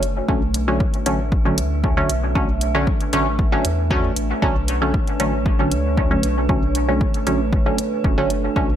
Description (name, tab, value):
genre	dub techno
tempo	116 BPM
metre	4/4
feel	straight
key	B minor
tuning	A4 = 438 Hz
part	deep dark ambient pad	sustained chords	0.1-8.8 s	A3 to F#5	-27 LUFS	right 3 dB	chorus, built-in reverb, vintage 12-bit sampler grit, sidechain pumping
part	filtered dub chord stab	stabs	0.0-8.7 s	D3 to C#4	-22 LUFS	equal	chorus, phaser, cassette tape, sidechain pumping, dub echo
part	pure sine sub bass	bass	0.0-8.8 s	F#1 to E2	-24 LUFS	equal	sidechain pumping
part	electronic hi-hat	drums	0.0-8.4 s	none	-27 LUFS	equal	overdrive
part	metallic inharmonic drone	texture	0.1-8.8 s	A3	-33 LUFS	equal	chorus, built-in reverb, phaser, sidechain pumping
part	electronic kick drum	drums	0.3-8.7 s	none	-21 LUFS	equal	overdrive
room	light reverb, digital ambience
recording	none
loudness	-17 LUFS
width	side -10 dB against mid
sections	0.0-8.8 A section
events	none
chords	0.0 Bm9